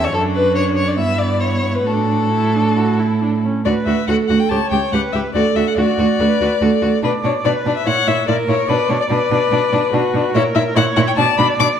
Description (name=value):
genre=quick classical-period movement for string quartet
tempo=144 BPM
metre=4/4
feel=rubato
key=D major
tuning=A4 = 440 Hz
part: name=rich violin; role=melody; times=0.0-11.7 s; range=E4 to D6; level=-20 LUFS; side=left 8 dB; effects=none
part: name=rich violin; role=second line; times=0.0-11.7 s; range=D4 to E5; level=-21 LUFS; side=left 3 dB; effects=none
part: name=rich viola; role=accompaniment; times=0.0-11.8 s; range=B3 to D5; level=-22 LUFS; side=right 3 dB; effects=none
part: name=rich cello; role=bass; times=0.0-11.7 s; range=C#2 to B2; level=-18 LUFS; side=right 4 dB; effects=none
room=wet recital hall reverb, RT60 1.4 s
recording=none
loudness=-14 LUFS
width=side -8 dB against mid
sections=0.0-3.7 A section; 3.7-11.8 B section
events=none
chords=0.1 D/F#; 1.0 Em/G; 1.9 D/A; 2.8 A; 3.7 D; 4.5 C#7(b5, no3); 5.4 D; 7.0 Bm; 7.9 A#dim; 8.7 Bm; 10.3 A#dim; 11.2 Bm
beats=| 0.14 0.56 0.97 1.40 | 1.86 2.31 2.76 3.21 | 3.65 4.08 4.51 4.93 | 5.35 5.78 6.20 6.62 | 7.03 7.45 7.87 8.28 | 8.69 9.10 9.51 9.93 | 10.34 10.76 11.17 11.59